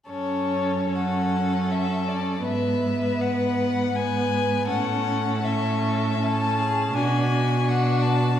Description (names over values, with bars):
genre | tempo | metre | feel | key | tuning
classical, slow romantic movement for string quartet | 69-85 BPM | 3/4 | rubato | F# minor | A4 = 439 Hz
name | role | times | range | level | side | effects
rich violin | melody | 0.1-8.4 s | C#5 to A5 | -28 LUFS | left 5 dB | none
rich violin | second line | 0.1-8.4 s | F#4 to B4 | -29 LUFS | left 3 dB | none
warm viola | accompaniment | 0.1-8.4 s | B3 to D4 | -27 LUFS | right 1 dB | none
rich cello | bass | 0.1-8.4 s | F#2 to B2 | -25 LUFS | right 2 dB | none
room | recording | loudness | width
wet recital hall reverb, RT60 1.7 s | heard from further back in the room | -21 LUFS | side -10 dB against mid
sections
0.1-8.4 A section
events
none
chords
0.1 F#m; 2.5 E/G#; 4.7 A; 7.0 Bm